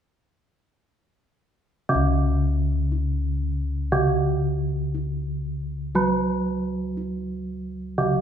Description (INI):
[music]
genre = Javanese gamelan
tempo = 59 BPM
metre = 4/4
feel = straight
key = unclear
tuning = A4 = 440 Hz
[part]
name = gamelan-type bronze metallophone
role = accompaniment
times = 1.9-8.2 s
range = C#3 to F#3-20c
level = -24 LUFS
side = right 1 dB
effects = none
[part]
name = gamelan-type bossed gongs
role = bass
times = 1.9-8.2 s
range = C#2 to F#4-20c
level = -26 LUFS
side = left 1 dB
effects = none
[sound]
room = wet large studio reverb, RT60 1.2 s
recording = band playing live in one room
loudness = -22 LUFS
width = side -8 dB against mid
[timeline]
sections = 1.9-8.2 A section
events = none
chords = none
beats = | 1.89 2.91 3.93 4.94 | 5.96 6.98 7.99